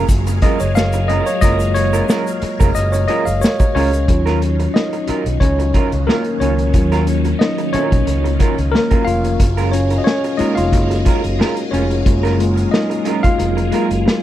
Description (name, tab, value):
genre	lush 1970s-style soul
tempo	90 BPM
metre	4/4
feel	swing 54% on 16ths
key	Eb minor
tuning	A4 = 438 Hz
part	tine electric piano	accompaniment	0.0-14.2 s	Gb3 to F5	-19 LUFS	left 2 dB	auto-pan
part	phased string machine	sustained chords	0.0-14.2 s	Eb3 to F5	-25 LUFS	equal	ensemble chorus, phaser
part	electric guitar through a small old amp	riff	0.0-14.1 s	Gb3 to Db5	-23 LUFS	right 7 dB	lush chorus
part	overdriven fingered electric bass	bass	0.0-14.0 s	F1 to Eb2	-18 LUFS	equal	none
part	vintage drum kit	drums	0.1-14.2 s	hi-hat, kick drum, snare drum	-17 LUFS	equal	none
part	egg shaker	percussion	0.1-4.1 s	none	-35 LUFS	left 11 dB	none
room	little or no reverb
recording	none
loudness	-14 LUFS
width	side -12 dB against mid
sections	0.0-4.1 A section; 4.1-14.2 B section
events	tine electric piano solo 0.0-4.1, 4.1-14.2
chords	0.0 Gbmaj9; 4.1 Ebm9; 9.4 Gbmaj9